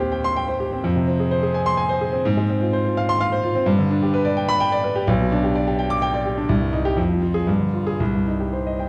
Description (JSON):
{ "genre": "classical, virtuoso piano study", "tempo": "127 BPM", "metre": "3/4", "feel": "rubato", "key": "C minor", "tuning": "A4 = 441 Hz", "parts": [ { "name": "warm grand piano", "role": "solo", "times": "0.0-8.9 s", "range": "B1 to D6", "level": "-21 LUFS", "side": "equal", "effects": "none" } ], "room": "wet recital hall reverb, RT60 1.5 s", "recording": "dark, warm production", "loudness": "-21 LUFS", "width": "mono", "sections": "0.0-8.9 A section", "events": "none", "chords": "0.0 Cm/Eb; 0.8 Fm; 2.2 Fm/Ab; 3.7 G; 5.1 G/B; 6.5 Cm; 7.0 Fm; 7.5 G5; 8.0 Cm" }